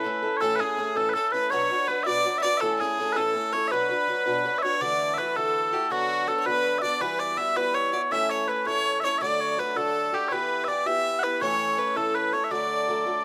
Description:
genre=celtic folk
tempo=109 BPM (dotted quarters)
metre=6/8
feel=straight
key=B dorian, D major from 4.8 s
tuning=A4 = 441 Hz
part: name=bright fiddle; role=melody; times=0.0-13.2 s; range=F#4 to E5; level=-32 LUFS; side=equal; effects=none
part: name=mellow small bagpipes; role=second line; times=0.0-13.2 s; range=F#4 to F#5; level=-28 LUFS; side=equal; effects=none
part: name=picked acoustic archtop guitar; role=accompaniment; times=0.0-13.2 s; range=A2 to B4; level=-33 LUFS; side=equal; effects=none
room=light reverb, small room ambience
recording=rough home demo mix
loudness=-25 LUFS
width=mono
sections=0.0-4.8 A section; 4.8-13.2 B section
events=none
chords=0.0 A; 1.5 Bm; 2.6 A; 3.7 Bm; 4.8 Dadd9; 5.9 Bm/D; 7.0 Emadd9; 8.1 A; 9.2 D; 10.3 Em; 11.4 A; 12.5 D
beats=| 0.41 0.96 | 1.51 2.06 | 2.61 3.17 | 3.71 4.26 | 4.82 5.37 | 5.92 6.46 | 7.01 7.57 | 8.11 8.66 | 9.21 9.76 | 10.31 10.86 | 11.41 11.96 | 12.51 13.06

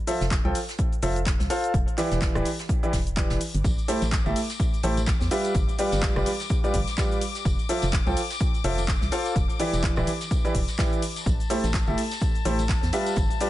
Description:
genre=piano house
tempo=126 BPM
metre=4/4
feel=swing 58% on 16ths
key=A minor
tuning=A4 = 444 Hz
part: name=clear upright piano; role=riff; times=0.1-13.5 s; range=E3 to G5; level=-27 LUFS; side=equal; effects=sidechain pumping, tape echo
part: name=house drum kit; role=drums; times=0.1-13.5 s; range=handclaps, hi-hat, rim click, shaker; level=-34 LUFS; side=left 1 dB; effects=none
part: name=jazz brush drum kit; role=drums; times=0.1-13.5 s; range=hi-hat, snare drum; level=-40 LUFS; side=right 2 dB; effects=sidechain pumping on hats, high-pass filter on hats, high-pass filter on snare, high-pass filter on room
part: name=organ-like FM bass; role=bass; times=0.2-13.3 s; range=D1 to E2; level=-27 LUFS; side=equal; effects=sidechain pumping
part: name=electronic kick drum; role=drums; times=0.3-13.3 s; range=none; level=-25 LUFS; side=equal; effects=none
part: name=warm chamber string section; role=sustained chords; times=3.6-13.5 s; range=A5 to D6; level=-36 LUFS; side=left 9 dB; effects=sidechain pumping
part: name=tambourine and congas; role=percussion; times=3.6-13.4 s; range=none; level=-39 LUFS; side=left 3 dB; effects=none
room=studio reverb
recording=nothing above 10.9 kHz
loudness=-22 LUFS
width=side -15 dB against mid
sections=0.0-13.5 A section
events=none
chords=0.0 Fmaj7; 1.7 Em7; 3.6 Am7; 5.3 G7; 7.5 Fmaj7; 9.4 Em7; 11.3 Am7; 12.9 G7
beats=0.31 0.79 1.26 | 1.74 2.21 2.69 3.17 | 3.64 4.12 4.60 5.07 | 5.55 6.03 6.50 6.98 | 7.45 7.93 8.41 8.88 | 9.36 9.84 10.31 10.79 | 11.26 11.74 12.21 12.69 | 13.17

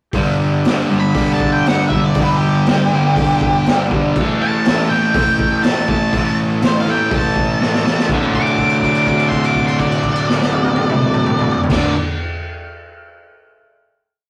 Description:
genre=garage rock duo or trio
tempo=122 BPM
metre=4/4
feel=straight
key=D major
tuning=A4 = 440 Hz
part: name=combo organ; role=sustained chords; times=0.1-11.9 s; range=E4 to D5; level=-32 LUFS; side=equal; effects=none
part: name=fuzz guitar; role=riff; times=0.1-11.9 s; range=D2 to A3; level=-18 LUFS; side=equal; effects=distortion
part: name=raw garage drum kit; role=drums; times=0.1-11.8 s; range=crash cymbal, hi-hat, kick drum, snare drum, toms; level=-22 LUFS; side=equal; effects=none
part: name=octave-fuzz lead guitar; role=melody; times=1.0-11.9 s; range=G4 to D6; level=-22 LUFS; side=equal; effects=distortion
room=wet stone room reverb, RT60 1.2 s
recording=rough rehearsal-room recording, warm saturation, cassette tape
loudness=-16 LUFS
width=mono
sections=0.1-8.1 pre-chorus; 8.1-12.0 final chord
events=drum fill 7.6-8.1; held note 8.1-11.7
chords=0.1 G; 4.2 A; 8.1 D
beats=| 0.15 0.65 1.16 1.66 | 2.16 2.66 3.16 3.66 | 4.16 4.66 5.15 5.64 | 6.14 6.63 7.12 7.61 | 8.10 8.58 9.07 9.56 | 10.05 10.54 11.03 11.52

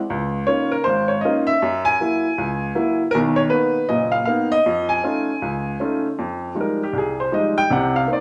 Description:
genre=solo jazz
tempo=158 BPM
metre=4/4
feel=swing 65% on 8ths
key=unclear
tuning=A4 = 441 Hz
part: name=clear upright piano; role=solo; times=0.1-8.2 s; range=F#1 to Ab5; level=-20 LUFS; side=equal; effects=none
room=wet large studio reverb, RT60 1.2 s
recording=band playing live in one room, nothing above 11.0 kHz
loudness=-20 LUFS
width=mono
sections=0.0-6.2 A section; 6.2-8.2 B section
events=upright piano solo 6.2-8.2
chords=0.1 Db69; 1.6 Gb7; 3.1 Bmaj7; 4.7 F7alt; 6.2 Fm9; 7.7 Cm9b5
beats=| 0.09 0.47 0.84 1.23 | 1.61 1.99 2.37 2.75 | 3.13 3.51 3.89 4.27 | 4.65 5.03 5.41 5.79 | 6.18 6.56 6.94 7.32 | 7.70 8.08

